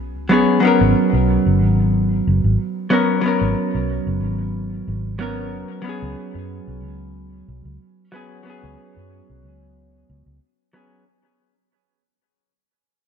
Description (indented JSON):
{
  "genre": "sunset chillout",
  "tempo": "92 BPM",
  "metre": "4/4",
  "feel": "straight",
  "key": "unclear",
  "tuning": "A4 = 443 Hz",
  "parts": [
    { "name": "vintage muted fingered electric bass", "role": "bass", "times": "0.0-10.4 s", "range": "F#1 to F#2", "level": "-21 LUFS", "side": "equal", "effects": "none" },
    { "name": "vintage hollow-body jazz guitar", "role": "accompaniment", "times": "0.3-11.0 s", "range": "F#3 to A#4", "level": "-19 LUFS", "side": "equal", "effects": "auto-pan, vintage 12-bit sampler grit, low-pass filter, ping-pong delay" }
  ],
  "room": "moderate lush hall reverb, RT60 2.4 s",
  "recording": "none",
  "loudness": "-16 LUFS",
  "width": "side -7 dB against mid",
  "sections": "0.0-11.1 A section",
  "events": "fade-out 0.0-11.1",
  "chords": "0.0 C#7sus4; 0.6 G#m11; 5.9 C#7sus4",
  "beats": "| 0.64 1.29 1.94 2.60 | 3.25 3.90 4.55 5.20 | 5.86 6.51 7.16 7.81 | 8.46 9.12 9.77 10.42"
}